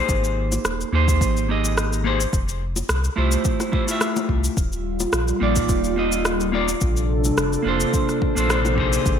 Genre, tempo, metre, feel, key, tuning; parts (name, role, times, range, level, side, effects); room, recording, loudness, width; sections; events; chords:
sunset chillout; 107 BPM; 4/4; swing 54% on 16ths; A4 = 440 Hz
clean electric guitar; accompaniment; 0.0-9.2 s; A3 to E5; -23 LUFS; moving between left 5 dB and right 6 dB; auto-pan, vintage 12-bit sampler grit, ping-pong delay
warm sub bass; bass; 0.1-9.2 s; Eb1 to Eb2; -23 LUFS; equal; tube saturation
electronic cabasa and rim click; drums; 0.1-9.2 s; -27 LUFS; left 1 dB
electronic kick drum; drums; 0.1-9.2 s; -23 LUFS; equal
bongos; percussion; 0.5-8.8 s; -32 LUFS; left 4 dB
airy breathy pad; sustained chords; 4.6-9.2 s; C3 to G5; -24 LUFS; equal; chorus
moderate plate reverb, RT60 1.2 s, digital ambience; bright 1980s-style digital production; -19 LUFS; side -8 dB against mid
0.0-9.2 A section
0.1 Abmaj9; 2.3 Fmaj9; 4.6 Ebmaj9; 6.8 Bbmaj9